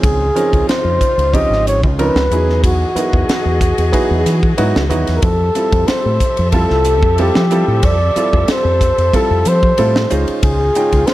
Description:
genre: electric jazz fusion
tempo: 92 BPM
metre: 4/4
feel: swing 53% on 16ths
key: unclear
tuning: A4 = 440 Hz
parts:
  - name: trumpet with bucket mute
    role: melody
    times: 0.0-11.1 s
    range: F#4 to Eb5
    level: -16 LUFS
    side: equal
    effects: slapback echo
  - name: warm grand piano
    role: accompaniment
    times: 0.0-11.1 s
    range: F3 to G5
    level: -20 LUFS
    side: right 2 dB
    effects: none
  - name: muted studio string section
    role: sustained chords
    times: 0.0-11.1 s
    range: Db3 to E5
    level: -25 LUFS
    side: left 1 dB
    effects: none
  - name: deep dub fingered electric bass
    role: bass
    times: 0.0-11.1 s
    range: Ab1 to F3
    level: -16 LUFS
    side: equal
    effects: none
  - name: crisp fusion drum kit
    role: drums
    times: 0.0-11.1 s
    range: hi-hat, kick drum, ride cymbal, snare drum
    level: -18 LUFS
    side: equal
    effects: none
room: light reverb, studio ambience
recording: none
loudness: -12 LUFS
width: side -15 dB against mid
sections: 0.0-11.1 A section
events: none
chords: 0.0 Dbmaj9; 2.3 Emaj9; 5.2 Fmaj9; 10.1 Dbmaj9

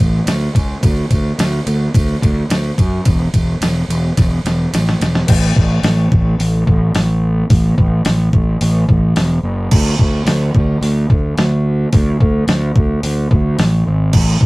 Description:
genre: rock, shoegaze and dream pop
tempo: 108 BPM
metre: 4/4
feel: straight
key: unclear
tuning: A4 = 441 Hz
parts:
  - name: fuzz fingered electric bass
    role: bass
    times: 0.0-14.5 s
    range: E1 to F#2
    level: -15 LUFS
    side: equal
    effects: overdrive
  - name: detuned 8-bit digital drum machine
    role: drums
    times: 0.3-14.5 s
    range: crash cymbal, hi-hat, kick drum, ride cymbal, snare drum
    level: -15 LUFS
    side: equal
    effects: none
room: light reverb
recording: rough rehearsal-room recording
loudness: -12 LUFS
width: side -22 dB against mid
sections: 0.0-5.3 A section; 5.3-14.5 B section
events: drum fill 4.2-5.3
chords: none

